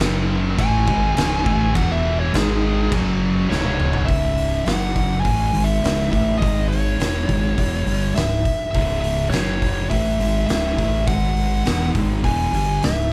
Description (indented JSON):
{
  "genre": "stoner and doom metal",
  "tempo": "103 BPM",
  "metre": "4/4",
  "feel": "straight",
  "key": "C# minor",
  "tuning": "A4 = 439 Hz",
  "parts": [
    { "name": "thick fuzz guitar", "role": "riff", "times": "0.0-13.0 s", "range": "C#2 to A3", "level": "-32 LUFS", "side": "equal", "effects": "none" },
    { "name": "thick fuzz guitar", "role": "riff", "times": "0.0-13.1 s", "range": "C#2 to A3", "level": "-26 LUFS", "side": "equal", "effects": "distortion" },
    { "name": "tight distorted guitar", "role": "riff", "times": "0.0-4.1 s", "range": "C#2 to A3", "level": "-31 LUFS", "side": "equal", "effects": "distortion" },
    { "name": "growling fingered electric bass", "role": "bass", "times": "0.0-13.1 s", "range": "C#1 to A1", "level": "-26 LUFS", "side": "equal", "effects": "overdrive" },
    { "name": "oversized low-tuned drum kit", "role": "drums", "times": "0.0-13.0 s", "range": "crash cymbal, hi-hat, kick drum, snare drum, toms", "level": "-26 LUFS", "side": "equal", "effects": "none" },
    { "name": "fuzz lead guitar", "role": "melody", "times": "0.6-13.1 s", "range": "G#4 to G#5", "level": "-27 LUFS", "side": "equal", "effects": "distortion" }
  ],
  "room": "light reverb",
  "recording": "band playing live in one room",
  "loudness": "-20 LUFS",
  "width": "mono",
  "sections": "0.0-4.1 A section; 4.1-13.1 B section",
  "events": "lead electric guitar solo 0.0-4.1; drum fill 3.5-4.1",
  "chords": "0.0 F#5; 0.6 C#m; 1.8 E5; 2.3 G#5; 2.9 F#5; 3.5 C#5; 4.7 F#5; 5.2 C#m; 6.4 G#5; 7.0 C#m; 9.3 F#5; 9.9 C#m; 11.1 G#5; 11.7 C#m",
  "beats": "0.00 0.58 1.17 | 1.75 2.33 2.92 3.50 | 4.08 4.67 5.25 5.83 | 6.41 7.00 7.58 8.16 | 8.74 9.32 9.91 10.49 | 11.07 11.65 12.23 12.81"
}